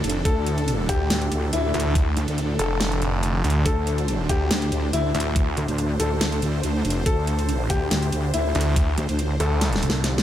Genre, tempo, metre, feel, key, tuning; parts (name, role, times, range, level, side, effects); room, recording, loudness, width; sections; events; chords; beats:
heavy wobble dubstep; 141 BPM; 4/4; half-time; D minor; A4 = 441 Hz
warm baby grand piano; melody; 0.0-10.2 s; E4 to A4; -29 LUFS; left 4 dB; ping-pong delay
supersaw chords; sustained chords; 0.0-10.2 s; A2 to A4; -30 LUFS; right 1 dB; phaser, sidechain pumping
wobble bass; bass; 0.0-10.2 s; F1 to D2; -24 LUFS; equal; chorus, overdrive
dubstep drum kit; drums; 0.0-10.2 s; hi-hat, snare drum; -27 LUFS; equal
electronic kick drum; drums; 0.3-8.9 s; -22 LUFS; equal
snarling distorted saw bass; bass; 0.9-9.8 s; F1 to D2; -23 LUFS; equal; distortion, overdrive
digital ambience; -20 LUFS; side -11 dB against mid
0.0-10.2 A section
drum fill 9.6-10.2
0.0 D5
| 0.25 0.68 1.10 1.53 | 1.95 2.38 2.81 3.23 | 3.66 4.08 4.51 4.93 | 5.36 5.78 6.21 6.63 | 7.06 7.49 7.91 8.34 | 8.76 9.19 9.61 10.04